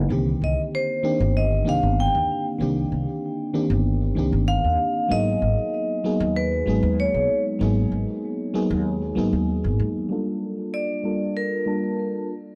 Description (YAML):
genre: sunset chillout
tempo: 96 BPM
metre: 4/4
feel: straight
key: C minor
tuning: A4 = 445 Hz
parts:
  - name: mellow FM electric piano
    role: accompaniment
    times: 0.0-12.3 s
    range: D3 to A5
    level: -27 LUFS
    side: equal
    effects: chorus, low-pass filter, tape echo
  - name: upright bass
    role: bass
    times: 0.0-10.1 s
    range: G1 to Ab2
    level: -26 LUFS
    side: equal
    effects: none
  - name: vibraphone with hard mallets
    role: melody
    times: 0.4-12.3 s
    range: Bb4 to G5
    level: -28 LUFS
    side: equal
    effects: analog delay
room: light reverb, small room ambience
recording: dry, gritty hardware recording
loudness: -23 LUFS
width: mono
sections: 0.0-10.1 A section; 10.1-12.6 B section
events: filter sweep on FM electric piano 10.1-12.6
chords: 0.1 Cm9; 5.1 Abm9; 10.1 Gm9